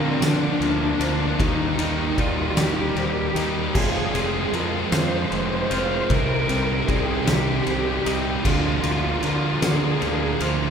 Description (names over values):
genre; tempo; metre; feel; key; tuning
post-rock; 51 BPM (dotted quarters); 6/8; straight; F dorian; A4 = 440 Hz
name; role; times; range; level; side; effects
lead guitar through a small cranked amp; melody; 0.0-10.4 s; C4 to C5; -26 LUFS; left 1 dB; overdrive
muted studio string section; sustained chords; 0.0-10.7 s; Eb4 to C6; -37 LUFS; equal; none
felt-muted upright piano; arpeggios; 0.0-10.7 s; Ab4 to D5; -37 LUFS; right 2 dB; none
twangy electric guitar; arpeggios; 0.0-10.7 s; C3 to F4; -31 LUFS; left 2 dB; none
thick fuzz guitar; riff; 0.0-10.7 s; C3 to F4; -28 LUFS; left 5 dB; distortion
thick fuzz guitar; riff; 0.0-10.7 s; C3 to F4; -28 LUFS; right 5 dB; distortion
fuzz fingered electric bass; bass; 0.0-10.7 s; F1 to D3; -27 LUFS; right 1 dB; overdrive
oversized low-tuned drum kit; drums; 0.2-10.6 s; crash cymbal, kick drum, ride cymbal, snare drum; -26 LUFS; equal; none
room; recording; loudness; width
wet church reverb, RT60 2.8 s; recorded in a church or concert hall; -20 LUFS; side -7 dB against mid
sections
0.0-10.7 A section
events
none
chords
0.0 Bb/D; 1.4 Eb; 3.8 Fm; 6.1 Cm; 8.4 Bb/D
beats
0.23 | 1.40 2.58 | 3.75 4.93 | 6.10 7.28 | 8.45 9.62